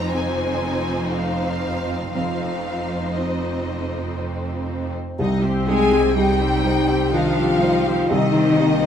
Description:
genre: cinematic, emotional film score for orchestra.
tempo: 60 BPM.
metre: 3/4.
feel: rubato.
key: C minor.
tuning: A4 = 440 Hz.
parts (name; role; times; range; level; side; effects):
clear symphonic violin section; melody; 0.0-8.9 s; C5 to Ab5; -32 LUFS; left 2 dB; none.
warm symphonic violin section; second line; 0.0-8.9 s; Eb4 to Ab5; -27 LUFS; left 3 dB; none.
felt-muted upright piano; accompaniment; 0.0-8.9 s; C2 to C5; -27 LUFS; right 1 dB; none.
rich symphonic viola section; accompaniment; 0.0-8.9 s; F3 to G4; -28 LUFS; right 1 dB; none.
concert harp; arpeggios; 0.0-8.9 s; C3 to C5; -31 LUFS; left 8 dB; none.
rich symphonic cello section; bass; 0.0-8.9 s; F2 to Ab3; -26 LUFS; right 3 dB; none.
rich symphonic double bass section; bass; 0.0-8.9 s; F1 to C2; -28 LUFS; right 3 dB; none.
warm clarinet; second line; 5.2-8.9 s; Bb3 to Eb4; -26 LUFS; left 1 dB; none.
mellow French horn section; sustained chords; 5.7-8.9 s; Eb4 to Ab4; -20 LUFS; left 3 dB; none.
room: moderate scoring stage reverb, RT60 1.5 s.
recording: none.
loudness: -18 LUFS.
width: side -8 dB against mid.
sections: 0.0-5.2 A section; 5.2-8.9 A section.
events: none.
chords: 0.0 F7(no3); 5.2 Cm.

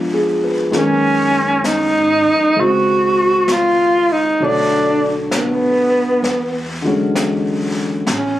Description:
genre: jazz ballad.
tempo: 65 BPM.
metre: 4/4.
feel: swing 66% on 8ths.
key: unclear.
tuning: A4 = 440 Hz.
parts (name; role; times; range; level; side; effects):
warm concert grand piano; accompaniment; 0.0-8.1 s; D3 to Db5; -19 LUFS; left 2 dB; none.
upright bass; bass; 0.0-8.4 s; A1 to Ab2; -30 LUFS; equal; none.
jazz brush drum kit; drums; 0.7-8.4 s; brushed snare drum, hi-hat, snare drum; -26 LUFS; left 1 dB; none.
breathy tenor saxophone; melody; 0.8-8.4 s; Cb4 to Gb4; -14 LUFS; right 1 dB; none.
room: light reverb.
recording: recorded on a phone in the room, club ambience.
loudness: -13 LUFS.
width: side -13 dB against mid.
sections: 0.0-8.4 A section.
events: none.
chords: 0.0 Db7b9 (rootless); 0.7 Gb69; 4.4 Cbm9; 6.2 E13.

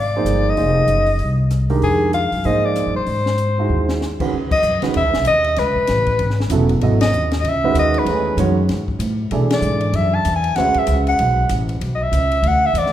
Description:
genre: modal jazz.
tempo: 192 BPM.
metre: 4/4.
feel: swing 61% on 8ths.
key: F dorian.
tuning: A4 = 439 Hz.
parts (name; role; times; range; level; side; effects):
breathy soprano saxophone; melody; 0.0-12.9 s; Ab4 to A5; -18 LUFS; left 1 dB; none.
upright bass; bass; 0.0-12.9 s; E1 to B2; -19 LUFS; equal; none.
warm concert grand piano; accompaniment; 0.2-11.4 s; C#3 to E5; -22 LUFS; right 4 dB; none.
compact cocktail drum kit; drums; 0.3-12.9 s; crash cymbal, hi-hat, kick drum, ride cymbal, rim click, snare drum; -28 LUFS; left 2 dB; none.
room: wet recital hall reverb, RT60 1.7 s.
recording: recorded in a church or concert hall.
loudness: -15 LUFS.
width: side -12 dB against mid.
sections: 0.0-4.3 A section; 4.3-12.9 B section.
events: drum fill 3.7-4.0; band accent 4.5, 7.0, 9.5.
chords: 0.0 Fm9; 3.1 Ab7b13; 4.3 C#m11; 9.3 Bm11.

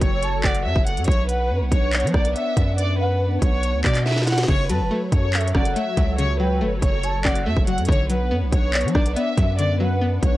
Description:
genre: hip hop, drill.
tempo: 141 BPM.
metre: 4/4.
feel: half-time.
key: unclear.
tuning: A4 = 440 Hz.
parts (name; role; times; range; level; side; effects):
rich studio violin section; melody; 0.0-10.4 s; B4 to F#5; -26 LUFS; equal; low-pass filter, tape echo.
hollow soft pad; sustained chords; 0.0-10.4 s; F#3 to F#5; -30 LUFS; left 1 dB; ensemble chorus.
long sustained 808-style bass; bass; 0.0-10.4 s; F#1 to F#3; -23 LUFS; equal; none.
drill drum kit; drums; 0.0-10.3 s; crash cymbal, handclaps, hi-hat, kick drum, rim click, snare drum; -21 LUFS; equal; vintage 12-bit sampler grit.
gliding portamento lead; second line; 0.2-10.0 s; C#5 to A5; -30 LUFS; right 2 dB; chorus, tape echo.
string-like resonator pluck; accompaniment; 4.5-10.4 s; C#3 to D5; -27 LUFS; left 2 dB; chorus, low-pass filter.
room: little or no reverb.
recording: dry, gritty hardware recording, cassette tape.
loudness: -18 LUFS.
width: side -16 dB against mid.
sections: 0.0-10.4 A section.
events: drum fill 4.1-4.5.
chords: 0.0 F#m; 1.1 Bm; 4.5 F#m; 7.9 Bm.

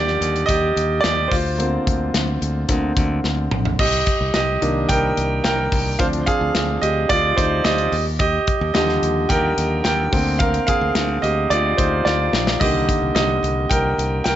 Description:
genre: piano-driven pop.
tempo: 109 BPM.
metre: 4/4.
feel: straight.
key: C minor.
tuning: A4 = 440 Hz.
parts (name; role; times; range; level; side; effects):
warm concert grand piano; accompaniment; 0.0-14.4 s; D3 to G5; -19 LUFS; right 2 dB; none.
modern bright fingered electric bass; bass; 0.0-14.4 s; Bb1 to Eb2; -24 LUFS; left 1 dB; none.
modern studio drum kit; drums; 0.1-14.4 s; crash cymbal, hi-hat, kick drum, snare drum, splash cymbal, toms; -23 LUFS; left 1 dB; none.
room: light reverb, small room ambience.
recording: nothing above 7.8 kHz.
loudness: -17 LUFS.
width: side -11 dB against mid.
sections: 0.0-3.8 A section; 3.8-14.4 B section.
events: grand piano solo 0.0-3.8, 3.8-14.4; drum fill 3.2-3.8, 12.1-12.6.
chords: 0.0 Ebmaj7; 1.3 Bbadd9/D; 3.8 Cm7; 6.0 G7sus4/D; 7.9 Ebmaj7; 10.1 Bbadd9/D; 12.6 Cm7.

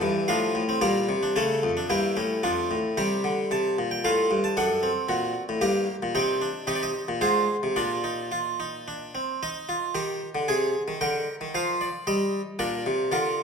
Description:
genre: classical, baroque-style 4-part fugue for harpsichord.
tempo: 113 BPM.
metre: 3/4.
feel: straight.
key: G minor, Eb major from 6.1 s.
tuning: A4 = 442 Hz.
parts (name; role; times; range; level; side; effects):
harpsichord; solo; 0.0-13.4 s; F2 to Bb5; -24 LUFS; equal; none.
room: wet recital hall reverb, RT60 1.7 s.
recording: minimal, uncompressed stereo recording.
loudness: -24 LUFS.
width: side -6 dB against mid.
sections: 0.0-3.0 A section; 3.0-9.4 B section; 9.4-13.4 A section.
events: none.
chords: 0.0 Dm; 0.8 Gm/Bb; 1.4 A7; 2.4 Dm/F; 3.0 C5; 4.0 F/A; 4.6 D7/F#; 5.6 Gm; 6.1 Cm; 7.2 Fm/Ab; 7.7 Bb; 9.4 Eb; 10.5 Ab/C; 11.0 Bb/D; 12.1 Eb/G; 12.6 Bb.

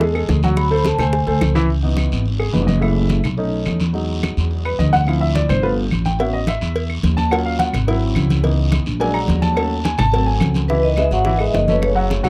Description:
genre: Afro-Cuban jazz.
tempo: 213 BPM.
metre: 4/4.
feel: straight.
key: C# minor.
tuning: A4 = 440 Hz.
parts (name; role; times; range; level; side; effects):
warm upright piano; accompaniment; 0.0-12.3 s; E3 to A#5; -23 LUFS; equal; none.
upright bass; bass; 0.0-12.3 s; F#1 to E2; -21 LUFS; equal; none.
bongos and cowbell; percussion; 0.0-1.7, 6.2-12.3 s; none; -29 LUFS; equal; none.
congas; percussion; 0.0-12.3 s; none; -25 LUFS; equal; none.
guiro; percussion; 0.0-12.3 s; none; -36 LUFS; equal; none.
claves; percussion; 0.2-12.3 s; none; -34 LUFS; equal; none.
vibraphone with medium mallets; melody; 0.6-1.4, 10.7-12.3 s; B4 to B5; -22 LUFS; equal; none.
trombone with cup mute; second line; 10.7-12.3 s; B2 to F#3; -29 LUFS; equal; none.
room: light reverb.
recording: dry, close 1970s-style studio recording.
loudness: -18 LUFS.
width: mono.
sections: 0.0-1.7 A section; 1.7-10.7 A section; 10.7-12.3 B section.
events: vibraphone solo 0.0-1.7; upright piano solo 1.7-10.7.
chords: 0.0 A5; 0.6 D9; 1.7 C#m9; 2.8 F#m7; 3.4 B7; 3.9 Emaj9; 5.1 Dm7; 5.6 G9; 6.2 A69; 7.3 D#m7; 7.9 G#7b13; 8.4 C#m9; 9.0 A#aug7; 9.6 D#m7b5; 10.1 G#7b9; 10.7 C#m7.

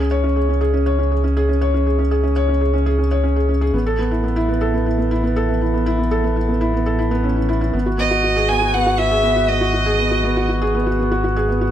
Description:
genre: piano and strings electronica.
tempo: 120 BPM.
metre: 4/4.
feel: straight.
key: C# minor.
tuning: A4 = 440 Hz.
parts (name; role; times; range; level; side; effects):
felt-muted upright piano; riff; 0.0-11.7 s; B3 to C#5; -19 LUFS; right 1 dB; tape echo.
round analog bass; bass; 0.0-11.7 s; G#1 to C#2; -20 LUFS; equal; none.
warm violin; melody; 8.0-10.5 s; D#5 to G#5; -18 LUFS; right 1 dB; none.
room: light reverb, studio ambience.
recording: none.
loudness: -16 LUFS.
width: side -10 dB against mid.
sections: 0.0-11.7 A section.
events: none.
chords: 0.0 C#5; 3.7 Aadd9; 7.7 G#m7.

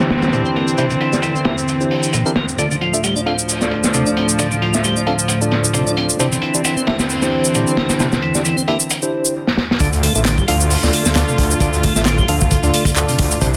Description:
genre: breakbeat, breaks.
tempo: 133 BPM.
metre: 4/4.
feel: swing 55% on 16ths.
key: D minor.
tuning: A4 = 439 Hz.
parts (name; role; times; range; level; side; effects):
warm studio string section; sustained chords; 0.0-13.6 s; D2 to F4; -23 LUFS; equal; sidechain pumping.
tine electric piano; stabs; 0.0-13.5 s; D4 to F5; -25 LUFS; equal; vintage 12-bit sampler grit, tape echo.
crunchy breakbeat drum kit; drums; 0.0-13.6 s; hi-hat, kick drum, snare drum; -22 LUFS; equal; low-pass filter on kick, low-pass filter on hats, low-pass filter on snare, low-pass filter on room.
house drum kit; drums; 0.0-13.6 s; handclaps, hi-hat, shaker; -24 LUFS; equal; overdrive, low-pass filter on perc, low-pass filter on hats, low-pass filter on snare.
tonewheel organ; riff; 0.3-13.5 s; Bb2 to D4; -25 LUFS; equal; slow rotary speaker, low-pass filter, tape echo.
detuned saw bass; bass; 9.8-13.6 s; A1 to D2; -21 LUFS; equal; none.
room: light reverb, small room reverb.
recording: dense, heavily limited modern master.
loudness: -17 LUFS.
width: mono.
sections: 0.0-9.8 A section; 9.8-13.6 B section.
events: drum fill 9.5-9.8; drop 9.8-13.6.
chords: 0.0 Cadd9; 2.6 Dm; 6.2 Cadd9; 9.8 Dm.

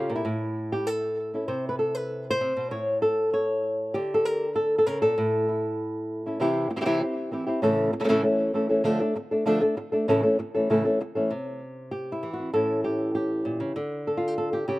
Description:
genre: flamenco.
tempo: 195 BPM.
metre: 4/4.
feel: straight.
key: A phrygian dominant.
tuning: A4 = 439 Hz.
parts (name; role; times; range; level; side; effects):
flamenco guitar; solo; 0.0-14.8 s; A2 to C#5; -23 LUFS; equal; none.
room: little or no reverb.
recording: recorded outdoors, with no room sound.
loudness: -23 LUFS.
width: side -18 dB against mid.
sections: 0.0-6.4 A section; 6.4-11.3 B section; 11.3-14.8 C section.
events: none.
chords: 0.3 A5; 1.5 Amadd9; 2.7 N.C.; 3.9 Bbmaj7; 5.2 A5; 6.4 C; 7.6 A; 8.9 Dm; 10.1 A; 11.3 C; 12.5 A; 13.8 Dm.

